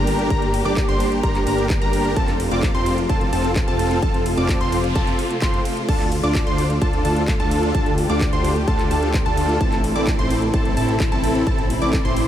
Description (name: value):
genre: EDM, festival progressive house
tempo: 129 BPM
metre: 4/4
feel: straight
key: D minor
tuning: A4 = 440 Hz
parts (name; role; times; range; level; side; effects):
- dark studio string section; sustained chords; 0.0-12.3 s; C3 to G4; -26 LUFS; left 1 dB; sidechain pumping
- plucky unison lead; arpeggios; 0.0-12.2 s; A5 to D6; -26 LUFS; equal; sidechain pumping, diffuse ambient delay
- supersaw chords; riff; 0.0-12.2 s; C4 to D5; -23 LUFS; equal; sidechain pumping, diffuse ambient delay
- fat analog bass; bass; 0.0-12.3 s; F1 to D2; -25 LUFS; equal; sidechain pumping
- house drum kit; drums; 0.1-12.3 s; crash cymbal, handclaps, hi-hat, ride cymbal; -32 LUFS; equal; overdrive
- electronic kick drum; drums; 0.3-12.0 s; none; -22 LUFS; equal; none
- noise sweep; sound effects; 4.7-5.9 s; none; -38 LUFS; right 2 dB; none
room: moderate huge ambient reverb, RT60 7.0 s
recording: dreamy mix soaked in reverb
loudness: -17 LUFS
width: side -11 dB against mid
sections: 0.0-12.3 A section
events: noise sweep 4.7-5.9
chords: 0.0 Gm; 2.2 F; 5.9 Dm; 9.6 Am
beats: | 0.30 0.77 1.23 1.70 | 2.17 2.63 3.10 3.56 | 4.03 4.49 4.96 5.42 | 5.89 6.35 6.82 7.28 | 7.75 8.21 8.68 9.14 | 9.61 10.07 10.54 11.00 | 11.47 11.93